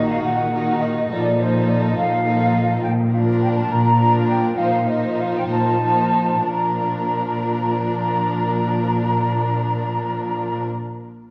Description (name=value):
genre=quick classical-period movement for symphony orchestra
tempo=59-71 BPM (dotted quarters)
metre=6/8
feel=rubato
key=Bb major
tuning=A4 = 440 Hz
part: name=muted chamber violin section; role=melody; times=0.0-10.7 s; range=Gb4 to C5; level=-35 LUFS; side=equal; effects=none
part: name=mellow flute section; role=second line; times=0.0-10.7 s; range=C5 to Bb5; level=-24 LUFS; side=equal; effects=none
part: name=muted chamber violin section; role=second line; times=0.0-10.7 s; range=D4 to Eb4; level=-32 LUFS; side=equal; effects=none
part: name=muted chamber viola section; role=accompaniment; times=0.0-10.7 s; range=Eb3 to F3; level=-28 LUFS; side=equal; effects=none
part: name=muted studio cello section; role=bass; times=0.0-10.6 s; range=Bb2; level=-24 LUFS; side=equal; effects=none
room=wet concert hall reverb, RT60 1.8 s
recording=none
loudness=-20 LUFS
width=mono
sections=0.0-6.5 A section; 6.5-10.5 B section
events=slowing down 2.0-6.5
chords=0.0 Ebm/Bb; 1.1 F7/Bb